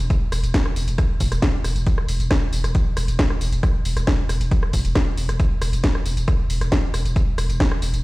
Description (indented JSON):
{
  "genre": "driving peak-time techno",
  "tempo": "136 BPM",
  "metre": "4/4",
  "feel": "straight",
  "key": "unclear",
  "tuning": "A4 = 440 Hz",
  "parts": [
    { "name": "saturated sub bass", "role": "bass", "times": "0.0-8.0 s", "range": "E1", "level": "-24 LUFS", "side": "equal", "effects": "tube saturation, sidechain pumping, low-pass filter" },
    { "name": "techno drum kit", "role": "drums", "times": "0.0-8.0 s", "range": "hi-hat, rim click, snare drum, tambourine", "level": "-26 LUFS", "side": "equal", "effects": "sidechain pumping on hats, sidechain pumping on perc" },
    { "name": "electronic kick drum", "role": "drums", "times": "0.1-7.7 s", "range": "none", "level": "-20 LUFS", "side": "equal", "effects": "none" }
  ],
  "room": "little or no reverb",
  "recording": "played on a big sound system in a bare room, stone room reverb",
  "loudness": "-18 LUFS",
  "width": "side -20 dB against mid",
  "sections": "0.0-8.0 A section",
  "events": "none",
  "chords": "none"
}